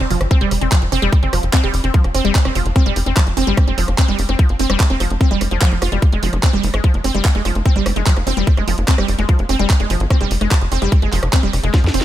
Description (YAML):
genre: psychedelic trance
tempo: 147 BPM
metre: 4/4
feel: straight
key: F minor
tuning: A4 = 445 Hz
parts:
  - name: wide unison pluck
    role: riff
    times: 0.0-12.0 s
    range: F3 to F4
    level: -20 LUFS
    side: right 1 dB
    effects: auto-pan, sidechain pumping, digital delay
  - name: tight sequencer bass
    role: bass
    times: 0.0-12.0 s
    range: F1 to F2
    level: -19 LUFS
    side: equal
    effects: none
  - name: garage drum kit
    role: drums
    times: 0.0-12.0 s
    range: handclaps, hi-hat, rim click, snare drum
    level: -24 LUFS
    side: right 1 dB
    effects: overdrive
  - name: electronic kick drum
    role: drums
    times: 0.3-11.8 s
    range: none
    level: -13 LUFS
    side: equal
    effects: overdrive
room: little or no reverb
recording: none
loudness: -14 LUFS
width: side -13 dB against mid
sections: 0.0-12.0 A section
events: drum fill 11.7-12.0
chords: 0.0 F5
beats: 0.31 0.72 | 1.12 1.53 1.94 2.35 | 2.76 3.17 3.57 3.98 | 4.39 4.80 5.21 5.62 | 6.02 6.43 6.84 7.25 | 7.66 8.06 8.47 8.88 | 9.29 9.70 10.11 10.51 | 10.92 11.33 11.74